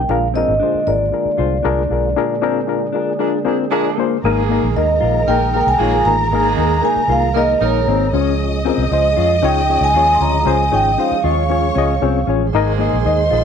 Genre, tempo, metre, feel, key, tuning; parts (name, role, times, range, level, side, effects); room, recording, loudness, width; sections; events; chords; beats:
soul; 116 BPM; 4/4; straight; Ab major; A4 = 440 Hz
vibraphone with soft mallets; melody; 0.0-13.4 s; Db5 to C6; -17 LUFS; right 2 dB
percussive tonewheel organ; sustained chords; 0.0-13.4 s; D3 to Ab4; -25 LUFS; right 15 dB; chorus vibrato, fast rotary speaker
vintage muted fingered electric bass; bass; 0.0-13.4 s; Ab1 to F2; -20 LUFS; right 1 dB; tube saturation
reed electric piano; accompaniment; 0.1-13.4 s; Ab2 to Eb5; -20 LUFS; left 11 dB; fast tremolo
mellow electric guitar; riff; 0.3-13.4 s; Bb3 to F4; -25 LUFS; left 13 dB; wide subtle chorus
mellow horn section; second line; 3.2-8.1, 12.5-13.3 s; Eb3 to Bb4; -23 LUFS; right 13 dB
dark studio string section; second line; 4.2-13.4 s; Bb4 to Eb6; -26 LUFS; left 2 dB
light reverb; 1960s-style stereo with parts hard left and right; -14 LUFS; side -7 dB against mid
0.0-4.2 A section; 4.2-13.4 B section
band accent 2.2-4.2
0.1 Bb7; 4.2 Absus2; 8.1 Db; 12.5 Absus2
| 0.09 0.61 1.13 1.65 | 2.17 2.69 3.21 3.72 | 4.24 4.76 5.28 5.80 | 6.32 6.84 7.36 7.87 | 8.39 8.91 9.43 9.95 | 10.46 10.98 11.50 12.02 | 12.54 13.06